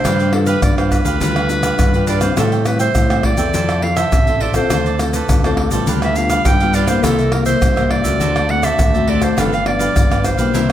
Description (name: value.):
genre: samba and choro.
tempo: 103 BPM.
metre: 4/4.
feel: straight.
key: unclear.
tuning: A4 = 440 Hz.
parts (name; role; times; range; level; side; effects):
clear clarinet; melody; 0.0-10.7 s; A4 to G5; -20 LUFS; right 2 dB; none.
cavaquinho; accompaniment; 0.0-10.7 s; D4 to G5; -24 LUFS; right 5 dB; none.
nylon-string guitar; accompaniment; 0.0-10.7 s; G2 to B4; -21 LUFS; left 5 dB; none.
modern bright picked electric bass; bass; 0.0-10.7 s; G1 to A2; -20 LUFS; right 1 dB; none.
egg shaker, surdo, pandeiro and tamborim; percussion; 0.0-10.7 s; none; -18 LUFS; equal; none.
room: wet large studio reverb, RT60 1.4 s.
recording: none.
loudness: -13 LUFS.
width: side -11 dB against mid.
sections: 0.0-10.7 A section.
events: none.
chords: 0.0 G7; 2.4 Am7; 3.5 Fmaj7; 4.7 Dm7; 5.9 G7/D; 7.0 C7; 8.2 D7; 9.4 G7.